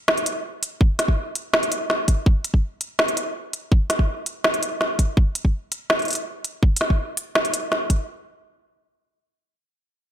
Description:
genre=half-time drum and bass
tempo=165 BPM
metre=4/4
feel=half-time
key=none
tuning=none
part: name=organic electronic drum kit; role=drums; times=0.1-8.0 s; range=hi-hat, snare drum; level=-21 LUFS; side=equal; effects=overdrive
part: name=electronic kick drum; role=drums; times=0.8-8.0 s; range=none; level=-17 LUFS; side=equal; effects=none
room=light reverb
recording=none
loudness=-20 LUFS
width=side -10 dB against mid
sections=0.0-8.1 A section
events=none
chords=none

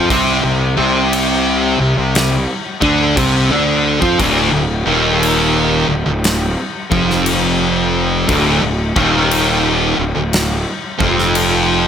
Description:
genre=stoner and doom metal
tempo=59 BPM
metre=4/4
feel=swing 66% on 8ths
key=unclear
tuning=A4 = 440 Hz
part: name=thick fuzz guitar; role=riff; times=0.0-11.9 s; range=D2 to F4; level=-14 LUFS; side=equal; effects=distortion
part: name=fuzz fingered electric bass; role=bass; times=0.0-11.9 s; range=D1 to F2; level=-19 LUFS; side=equal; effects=overdrive
part: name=big rock drum kit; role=drums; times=0.1-11.7 s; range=crash cymbal, kick drum, snare drum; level=-20 LUFS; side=left 1 dB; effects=none
room=little or no reverb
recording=none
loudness=-12 LUFS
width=side -8 dB against mid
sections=0.0-11.9 A section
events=none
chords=0.0 Csus24; 4.2 Dm

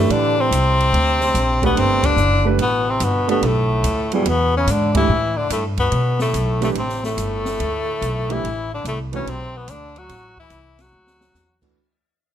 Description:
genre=jazz, small-group swing and bop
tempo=144 BPM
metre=4/4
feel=swing 66% on 8ths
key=G major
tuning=A4 = 440 Hz
part: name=bright tenor saxophone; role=melody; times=0.0-11.6 s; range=G3 to F#4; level=-21 LUFS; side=left 3 dB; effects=none
part: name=trombone with metal mute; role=second line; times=0.0-11.6 s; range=G2 to F#3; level=-28 LUFS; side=right 2 dB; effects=none
part: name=clear concert grand piano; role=accompaniment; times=0.0-11.8 s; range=E3 to B4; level=-22 LUFS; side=right 6 dB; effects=none
part: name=upright bass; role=bass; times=0.0-11.8 s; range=F#1 to B2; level=-21 LUFS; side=equal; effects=none
part: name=open jazz drum kit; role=drums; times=0.1-11.7 s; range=crash cymbal, hi-hat, kick drum, ride cymbal, snare drum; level=-28 LUFS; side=right 1 dB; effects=none
room=light reverb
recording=none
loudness=-17 LUFS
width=side -10 dB against mid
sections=0.0-5.1 A section; 5.1-11.8 B section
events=band accent 2.0, 4.9; fade-out 5.1-11.8; drum fill 10.9-11.3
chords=0.1 Am7; 0.9 D5; 1.8 Gmaj9; 3.4 Bm7; 4.3 E7; 5.1 G69; 5.9 Bm7; 6.8 Gsus24; 7.6 Dsus2; 8.4 Am; 9.3 Bm; 10.1 Am; 10.9 Dadd9

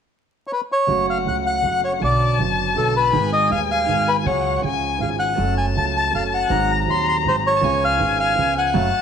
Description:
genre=tango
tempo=160 BPM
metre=3/4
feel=rubato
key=F# harmonic minor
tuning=A4 = 437 Hz
part: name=bandoneon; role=melody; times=0.5-9.0 s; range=A4 to B#5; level=-20 LUFS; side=left 1 dB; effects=none
part: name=warm violin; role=second line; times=0.9-9.0 s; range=F#5 to A#5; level=-24 LUFS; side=left 9 dB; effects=none
part: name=clear grand piano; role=accompaniment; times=0.9-8.9 s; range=D#1 to A4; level=-24 LUFS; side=right 7 dB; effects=none
part: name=upright bass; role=bass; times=0.9-8.9 s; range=F#1 to D#2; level=-26 LUFS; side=equal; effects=none
room=moderate echo chamber reverb, RT60 1.9 s, studio reverb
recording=1960s-style stereo with parts hard left and right, vinyl crackle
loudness=-17 LUFS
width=side -7 dB against mid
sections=0.9-9.0 A section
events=band accent 8.7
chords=0.0 N.C.; 0.9 F#m; 2.0 Bm; 3.1 G#m; 4.3 C#sus4; 4.6 C#; 5.4 F#m; 6.5 G#7; 7.6 C#7

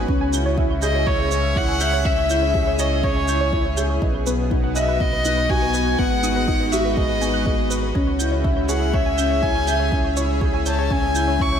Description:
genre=piano and strings electronica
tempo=122 BPM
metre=4/4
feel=straight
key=C# minor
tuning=A4 = 442 Hz
part: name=lush unison pad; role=sustained chords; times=0.0-11.6 s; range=B2 to E5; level=-27 LUFS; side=left 1 dB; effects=chorus, sidechain pumping
part: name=warbly dusty pluck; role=arpeggios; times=0.0-11.6 s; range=B4 to G6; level=-30 LUFS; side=right 2 dB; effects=chorus, sidechain pumping, diffuse ambient delay
part: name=dark concert grand piano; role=riff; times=0.0-11.6 s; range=B3 to E5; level=-24 LUFS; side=left 1 dB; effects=ensemble chorus, diffuse ambient delay
part: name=warm sub bass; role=bass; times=0.0-11.6 s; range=G#1 to C#2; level=-24 LUFS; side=equal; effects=sidechain pumping
part: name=electronic kick drum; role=drums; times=0.1-11.5 s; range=none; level=-23 LUFS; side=equal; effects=none
part: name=shaker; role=drums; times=0.3-11.2 s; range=none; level=-32 LUFS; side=right 5 dB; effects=none
part: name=warm violin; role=melody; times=0.8-11.6 s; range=C#5 to C#6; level=-24 LUFS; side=left 1 dB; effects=diffuse ambient delay
room=moderate lush hall reverb, RT60 1.6 s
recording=dreamy mix soaked in reverb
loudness=-18 LUFS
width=side -8 dB against mid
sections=0.0-11.6 A section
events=none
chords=0.1 C#m; 4.0 B; 6.0 G#m7; 8.0 C#m

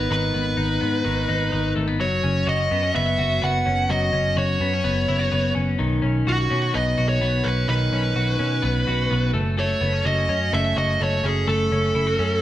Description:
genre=jangly indie pop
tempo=127 BPM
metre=4/4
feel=straight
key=unclear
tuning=A4 = 439 Hz
part: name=fuzz lead guitar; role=melody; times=0.0-12.4 s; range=F#4 to F#5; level=-24 LUFS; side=right 1 dB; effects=distortion
part: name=twelve-string electric guitar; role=arpeggios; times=0.0-12.4 s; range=D#3 to F#4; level=-25 LUFS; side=left 3 dB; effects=none
part: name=vintage muted picked electric bass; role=bass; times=0.0-12.4 s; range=F#1 to B2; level=-23 LUFS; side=right 1 dB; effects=none
room=wet stone room reverb, RT60 1.3 s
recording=band playing live in one room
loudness=-19 LUFS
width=side -13 dB against mid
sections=0.0-12.4 A section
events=none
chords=0.0 G#m; 2.0 F#sus4; 5.8 Badd9; 9.3 F#m

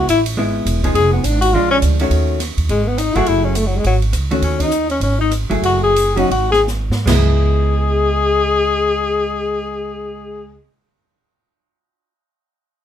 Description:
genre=jazz, small-group swing and bop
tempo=145-208 BPM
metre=4/4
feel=swing 61% on 8ths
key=C# minor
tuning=A4 = 440 Hz
part: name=breathy tenor saxophone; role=melody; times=0.0-10.6 s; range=F#3 to Ab4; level=-18 LUFS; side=left 5 dB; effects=none
part: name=breathy trombone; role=second line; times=0.0-10.6 s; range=F#3 to Ab4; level=-22 LUFS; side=right 2 dB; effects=none
part: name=vintage hollow-body jazz guitar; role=accompaniment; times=0.0-10.6 s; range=D#3 to G#4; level=-20 LUFS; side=left 1 dB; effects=none
part: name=upright bass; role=bass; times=0.0-10.6 s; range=E1 to G#2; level=-18 LUFS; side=right 1 dB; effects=none
part: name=open jazz drum kit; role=drums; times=0.1-7.2 s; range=crash cymbal, hi-hat, kick drum, ride cymbal, rim click, snare drum, toms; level=-25 LUFS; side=right 2 dB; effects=none
room=little or no reverb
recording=minimal, uncompressed stereo recording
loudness=-14 LUFS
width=side -10 dB against mid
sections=0.0-2.1 A section; 2.1-7.1 B section; 7.1-10.4 C section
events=slowing down 4.4-7.1; drum fill 6.7-7.1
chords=0.0 C#m7 (rootless); 1.0 Fm7b5; 1.5 A#7; 2.1 D#m7b5; 2.7 Emaj9; 3.3 F#m9; 3.8 G#7sus4; 4.4 D#m7b5; 5.0 F#m13/G#; 5.6 F#m9; 6.3 F#sus2/G#; 7.1 C#m7

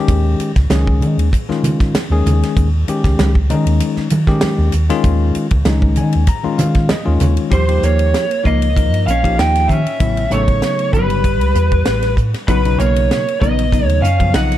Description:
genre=electric jazz fusion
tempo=97 BPM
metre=4/4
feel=swing 54% on 16ths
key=Eb mixolydian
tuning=A4 = 440 Hz
part: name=bell-like tine electric piano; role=accompaniment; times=0.0-14.6 s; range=B2 to Bb5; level=-19 LUFS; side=left 4 dB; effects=auto-pan
part: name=hollow-body short-scale fingered electric bass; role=bass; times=0.1-14.6 s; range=G1 to Eb3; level=-16 LUFS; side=equal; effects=none
part: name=tight funk drum kit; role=drums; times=0.1-14.6 s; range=hi-hat, kick drum, ride cymbal, snare drum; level=-19 LUFS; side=equal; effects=none
part: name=congas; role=percussion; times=0.1-7.4 s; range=none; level=-23 LUFS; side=right 3 dB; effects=none
part: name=lead guitar through a small cranked amp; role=melody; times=7.5-14.6 s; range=B4 to G5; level=-18 LUFS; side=right 1 dB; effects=overdrive, slapback echo
part: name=hollow-body jazz guitar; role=second line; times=7.5-14.6 s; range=F#3 to Eb4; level=-24 LUFS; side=right 3 dB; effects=none
room=small room ambience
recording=dark, warm production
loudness=-13 LUFS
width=side -12 dB against mid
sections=0.0-7.5 A section; 7.5-14.6 B section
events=tine electric piano fill 5.7-7.5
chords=0.0 Eb9sus4; 7.5 Eb7; 10.0 A9; 12.5 Bmaj7

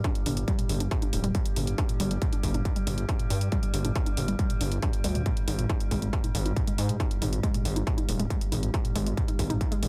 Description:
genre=driving peak-time techno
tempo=138 BPM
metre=4/4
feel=straight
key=unclear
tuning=A4 = 439 Hz
part: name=warbly dusty pluck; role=riff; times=0.0-9.9 s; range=G3 to Eb4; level=-37 LUFS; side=equal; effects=chorus, sidechain pumping, delay
part: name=metallic inharmonic drone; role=drone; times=0.0-9.9 s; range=G2 to G3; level=-39 LUFS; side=equal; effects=chorus, built-in reverb, sidechain pumping
part: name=electronic kick drum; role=drums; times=0.0-9.7 s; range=none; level=-31 LUFS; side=equal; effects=distortion, overdrive
part: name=techno drum kit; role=drums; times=0.0-9.9 s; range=hi-hat, toms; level=-37 LUFS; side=equal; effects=overdrive
part: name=gritty driven synth bass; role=bass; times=0.3-9.9 s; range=D1 to Ab2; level=-31 LUFS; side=equal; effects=sidechain pumping
room=little or no reverb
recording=none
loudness=-28 LUFS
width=mono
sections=0.0-9.9 A section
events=none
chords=0.0 G5; 5.3 Ab5

